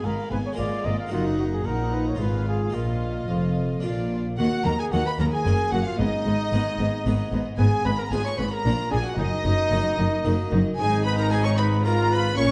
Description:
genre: classical, baroque-style concerto movement with solo episodes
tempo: 112 BPM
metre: 3/4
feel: straight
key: Eb minor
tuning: A4 = 440 Hz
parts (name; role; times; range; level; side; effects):
- mellow trumpet; melody; 0.0-12.5 s; Eb4 to F5; -32 LUFS; equal; none
- rich chamber violin section; melody; 0.0-12.5 s; Eb5 to Db6; -37 LUFS; equal; none
- warm chamber violin section; second line; 0.0-12.5 s; D5 to Db6; -34 LUFS; equal; none
- harpsichord; accompaniment; 0.0-12.5 s; F2 to Cb5; -35 LUFS; equal; none
- warm studio viola section; accompaniment; 0.0-12.5 s; Ab3 to F4; -32 LUFS; equal; none
- rich chamber cello section; bass; 0.0-12.5 s; F2 to Eb3; -30 LUFS; equal; none
- rich chamber double bass section; bass; 0.1-12.5 s; F1 to Eb2; -29 LUFS; equal; none
room: wet recital hall reverb, RT60 1.5 s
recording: dark, warm production, nothing above 10.6 kHz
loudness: -24 LUFS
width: mono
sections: 0.0-4.4 A section; 4.4-12.5 B section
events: none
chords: 0.0 Fdim/Ab; 0.6 Bb7/Ab; 1.1 Ebm/Gb; 2.2 Fdim/Ab; 2.7 Bbsus4; 3.8 Bb; 4.4 Eb5; 5.5 Gb; 6.0 Abm; 7.6 Fdim/Ab; 8.7 Bb; 9.2 Ebm/Gb; 10.8 Abm; 11.8 Fdim/Ab

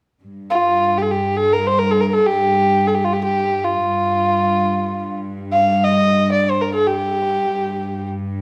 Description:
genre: persian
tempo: free time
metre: none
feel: none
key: G dastgah shur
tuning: A4 = 441 Hz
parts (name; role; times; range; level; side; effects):
- warm studio cello section; drone; 0.2-8.4 s; G2; -25 LUFS; equal; none
- warm kamancheh; melody; 0.5-8.1 s; F4 to F5; -19 LUFS; equal; none
room: moderate recital hall reverb, RT60 1.2 s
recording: none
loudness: -18 LUFS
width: mono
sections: 0.2-8.4 A section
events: none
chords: none

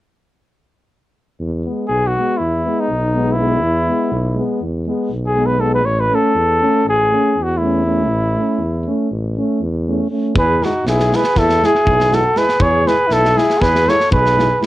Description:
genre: balkan folk, Balkan brass band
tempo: free time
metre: none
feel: none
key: E major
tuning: A4 = 441 Hz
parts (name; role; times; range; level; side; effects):
- mellow tuba; bass; 1.4-14.5 s; A1 to E2; -20 LUFS; equal; none
- dark euphonium; accompaniment; 1.7-14.7 s; G#3 to A3; -23 LUFS; right 4 dB; none
- mellow French horn; accompaniment; 1.7-14.7 s; B3 to E4; -22 LUFS; left 4 dB; none
- mellow cornet; melody; 1.9-14.6 s; D#4 to C#5; -16 LUFS; equal; none
- mellow flugelhorn; second line; 10.4-14.6 s; D#4 to A4; -22 LUFS; equal; none
- tight metal drum kit; percussion; 10.4-14.7 s; kick drum, snare drum; -21 LUFS; equal; none
room: light reverb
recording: worn, warbling old tape, cassette tape, warbly pitch drift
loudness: -14 LUFS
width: side -15 dB against mid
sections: 1.4-10.3 A section; 10.3-14.7 B section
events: none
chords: 1.4 E; 5.9 A; 10.3 E

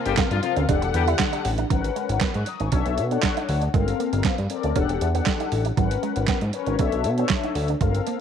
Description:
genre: early-eighties boogie funk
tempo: 118 BPM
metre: 4/4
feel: straight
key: unclear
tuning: A4 = 443 Hz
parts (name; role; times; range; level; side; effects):
- mellow synth brass; accompaniment; 0.0-8.2 s; C4 to F#6; -26 LUFS; left 11 dB; chorus
- warm studio string section; sustained chords; 0.0-1.7 s; C3 to F#5; -33 LUFS; left 2 dB; none
- electric guitar with an envelope filter; riff; 0.0-8.2 s; F#3 to E4; -31 LUFS; right 13 dB; analog chorus
- warm horn section; second line; 0.1-1.0 s; F3 to G4; -29 LUFS; left 10 dB; none
- fat analog bass; bass; 0.1-8.0 s; E1 to B2; -24 LUFS; equal; none
- clean 12-bit digital drum machine; drums; 0.1-8.2 s; handclaps, hi-hat, kick drum, snare drum; -25 LUFS; right 4 dB; overdrive
room: light reverb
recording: 1960s-style stereo with parts hard left and right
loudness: -21 LUFS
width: side -8 dB against mid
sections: 0.0-1.7 A section; 1.7-8.2 B section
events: none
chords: 0.0 Gm11; 0.7 Em11; 1.7 G#m11; 2.7 Bm11; 3.7 Gm11; 4.8 Em11; 5.8 G#m11; 6.8 Bm11

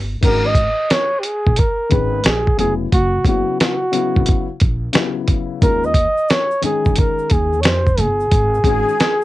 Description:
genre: hip hop, jazz-hop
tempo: 89 BPM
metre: 4/4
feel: swing 65% on 16ths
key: G# minor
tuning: A4 = 442 Hz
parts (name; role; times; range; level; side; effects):
- upright bass; bass; 0.0-8.8 s; E#1 to E#2; -21 LUFS; equal; none
- mellow flugelhorn; melody; 0.2-9.2 s; F#4 to D#5; -18 LUFS; right 1 dB; cassette tape
- dark upright piano; accompaniment; 0.2-8.9 s; C#3 to G#4; -23 LUFS; left 8 dB; cassette tape
- dusty soul sampler-style drum kit; drums; 0.2-9.2 s; crash cymbal, hi-hat, kick drum, snare drum; -16 LUFS; equal; none
- tube shaker and congas; percussion; 5.6-9.2 s; none; -34 LUFS; right 8 dB; none
- breathy concert flute; second line; 8.7-9.2 s; G#4; -22 LUFS; left 8 dB; cassette tape
room: light reverb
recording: home recording on cassette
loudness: -14 LUFS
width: side -16 dB against mid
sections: 0.2-9.2 A section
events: none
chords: 0.2 G#9sus4; 2.9 F#7sus4; 5.6 D#9sus4; 8.3 G#7sus4

